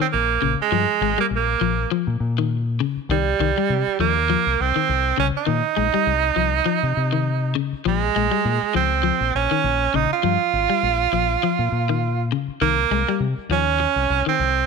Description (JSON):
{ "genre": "afrobeat", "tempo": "101 BPM", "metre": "4/4", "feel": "swing 56% on 16ths", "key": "Bb dorian", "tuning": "A4 = 440 Hz", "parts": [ { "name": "edgy tenor saxophone", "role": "melody", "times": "0.0-14.7 s", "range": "G3 to F4", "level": "-20 LUFS", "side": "right 11 dB", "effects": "none" }, { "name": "electric guitar at the edge of break-up", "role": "arpeggios", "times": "0.0-14.4 s", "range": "Db3 to Ab3", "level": "-25 LUFS", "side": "left 14 dB", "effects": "none" }, { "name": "deep dub fingered electric bass", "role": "bass", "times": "0.0-14.6 s", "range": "Ab1 to C3", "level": "-24 LUFS", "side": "left 2 dB", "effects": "none" } ], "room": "light reverb, small room ambience", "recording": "1960s-style stereo with parts hard left and right", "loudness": "-18 LUFS", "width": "side -5 dB against mid", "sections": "0.0-14.7 A section", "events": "none", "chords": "0.0 Bb5; 3.1 Cm; 7.9 Bbm; 12.6 Cm7" }